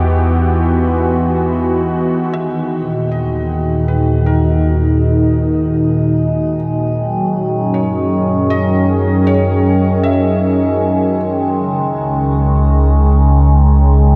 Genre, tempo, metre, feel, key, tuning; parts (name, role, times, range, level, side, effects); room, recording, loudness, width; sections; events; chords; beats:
ambient; 78 BPM; 3/4; straight; A4 = 444 Hz
warm analog pad; sustained chords; 0.0-14.2 s; A#2 to A#4; -17 LUFS; equal; lush chorus, shimmer reverb
deep rumbling drone; bass; 0.0-14.2 s; C#2 to F#2; -18 LUFS; equal; built-in reverb
overtone-sweeping drone; drone; 0.0-14.2 s; D#3 to D#4; -24 LUFS; equal; chorus, built-in reverb
felt-muted upright piano; melody; 2.3-11.2 s; A#4 to E5; -30 LUFS; equal; shimmer reverb, tape echo
wet cathedral reverb, RT60 5.7 s; in a vast, echoing space; -14 LUFS; mono
0.0-2.4 A section; 2.4-14.2 B section
fade-in on felt piano 2.4-14.2; filter sweep on analog synth pad 2.4-14.2
0.0 Em; 2.4 D#m; 7.0 F#7; 11.6 C#5
| 0.06 0.83 1.60 | 2.37 3.13 3.90 | 4.67 5.44 6.21 | 6.98 7.75 8.52 | 9.29 10.06 10.83 | 11.60 12.37 13.13 | 13.90